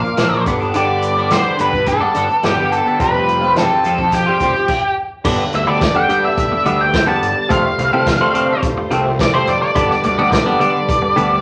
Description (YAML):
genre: psychedelic rock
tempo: 106 BPM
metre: 4/4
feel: straight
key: G mixolydian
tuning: A4 = 440 Hz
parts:
  - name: octave-fuzz lead guitar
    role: melody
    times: 0.0-11.4 s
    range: G4 to A5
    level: -19 LUFS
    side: equal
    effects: distortion
  - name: rich studio string section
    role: sustained chords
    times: 0.0-11.4 s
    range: G3 to D6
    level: -30 LUFS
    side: equal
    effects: none
  - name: twangy electric guitar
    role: riff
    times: 0.0-11.4 s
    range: G2 to F4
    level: -20 LUFS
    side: equal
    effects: phaser
  - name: egg shaker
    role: percussion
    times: 0.0-4.6 s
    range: none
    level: -47 LUFS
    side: equal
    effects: none
  - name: fuzz picked electric bass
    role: bass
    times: 0.2-11.4 s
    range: F1 to G2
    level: -26 LUFS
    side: equal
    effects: overdrive
  - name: vintage drum kit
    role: drums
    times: 0.2-11.3 s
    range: crash cymbal, hi-hat, kick drum, snare drum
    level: -24 LUFS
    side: equal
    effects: none
  - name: pedal harmonium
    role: drone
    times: 5.3-11.4 s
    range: G2 to D3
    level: -27 LUFS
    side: equal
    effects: none
room: wet club reverb, RT60 0.8 s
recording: none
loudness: -16 LUFS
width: mono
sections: 0.0-5.2 A section; 5.2-11.4 B section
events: stop 4.7-5.2; lead electric guitar solo 5.2-11.4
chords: 0.5 G; 3.0 Fsus2; 5.2 G; 7.5 F; 9.8 G